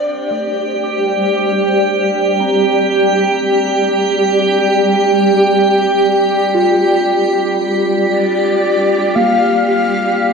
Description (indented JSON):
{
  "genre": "ambient",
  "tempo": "58 BPM",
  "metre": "4/4",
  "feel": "straight",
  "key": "unclear",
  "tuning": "A4 = 441 Hz",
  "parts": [
    { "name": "granular cloud pad", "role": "sustained chords", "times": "0.0-10.3 s", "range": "G4 to D5", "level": "-14 LUFS", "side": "equal", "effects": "built-in reverb" },
    { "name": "drifting glass-harmonics texture", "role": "texture", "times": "0.1-10.3 s", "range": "G5", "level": "-19 LUFS", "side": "right 3 dB", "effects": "chorus, built-in reverb" },
    { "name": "muted felt-like synth keys", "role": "arpeggios", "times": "0.3-10.3 s", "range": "A3 to D6", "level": "-21 LUFS", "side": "equal", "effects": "chorus, ping-pong delay" },
    { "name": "breathy flute-like synth lead", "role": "melody", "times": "8.1-10.3 s", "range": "D5 to F5", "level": "-16 LUFS", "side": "left 2 dB", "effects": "lush chorus, ping-pong delay" }
  ],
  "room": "wet concert hall reverb, RT60 2.0 s",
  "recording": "dark, warm production",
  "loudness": "-12 LUFS",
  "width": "side -5 dB against mid",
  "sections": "0.0-10.3 A section",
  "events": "fade-in on synth keys 0.0-10.3",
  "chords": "0.0 Bbadd9/G",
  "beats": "0.84 1.88 2.92 | 3.96 4.99 6.03 7.06 | 8.10 9.14 10.18"
}